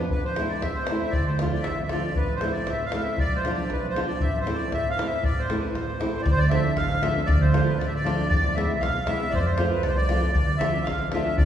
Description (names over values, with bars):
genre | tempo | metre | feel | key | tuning
balkan folk, Balkan wedding band | 117 BPM | 2/4 | swing 55% on 16ths | unclear | A4 = 440 Hz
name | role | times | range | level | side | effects
accordion | melody | 0.0-11.4 s | B4 to F5 | -27 LUFS | right 1 dB | light tremolo tuning
flamenco guitar | accompaniment | 0.0-11.3 s | E3 to F4 | -29 LUFS | equal | none
upright bass | bass | 0.1-11.4 s | A1 to F2 | -26 LUFS | right 1 dB | none
davul | percussion | 0.1-11.4 s | none | -28 LUFS | left 1 dB | none
room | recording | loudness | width
wet church reverb, RT60 2.8 s | recorded in a church or concert hall, studio reverb | -22 LUFS | side -10 dB against mid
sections
0.0-6.3 A section; 6.3-11.4 B section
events
none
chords
0.1 Am; 1.1 Dm; 2.2 Am; 3.2 Bdim; 4.2 Am; 6.3 Dm; 8.3 E; 9.3 F; 10.4 Dm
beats
| 0.11 0.63 | 1.14 1.65 | 2.16 2.68 | 3.19 3.70 | 4.21 4.72 | 5.24 5.75 | 6.26 6.77 | 7.28 7.79 | 8.30 8.81 | 9.33 9.84 | 10.35 10.86 | 11.38